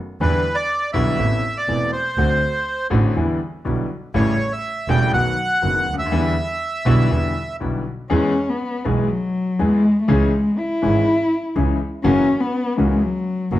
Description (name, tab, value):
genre	tango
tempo	122 BPM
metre	4/4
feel	rubato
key	E minor, E major from 8.1 s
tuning	A4 = 440 Hz
part	bandoneon	melody	0.2-7.6 s	B4 to G5	-22 LUFS	right 1 dB	none
part	bright grand piano	accompaniment	0.2-13.6 s	E1 to G#4	-22 LUFS	left 2 dB	none
part	clear double bass	bass	0.2-13.6 s	E1 to E2	-22 LUFS	right 2 dB	none
part	dark cello	second line	8.1-13.6 s	F#3 to E4	-19 LUFS	left 1 dB	none
room	moderate large studio reverb, RT60 1.3 s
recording	close, detailed microphones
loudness	-17 LUFS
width	side -14 dB against mid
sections	0.0-8.1 A section; 8.1-13.6 B section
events	cello solo 8.1-13.6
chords	0.2 Em7; 1.2 Amadd9; 2.2 D7; 3.2 Em7; 4.1 A7; 5.1 B; 6.1 Em7; 8.1 E; 10.1 C#m; 12.1 F#7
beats	| 0.20 0.70 1.20 1.69 | 2.18 2.67 3.16 3.65 | 4.14 4.63 5.13 5.62 | 6.12 6.61 7.11 7.61 | 8.11 8.60 9.10 9.60 | 10.09 10.58 11.07 11.56 | 12.05 12.54 13.03 13.52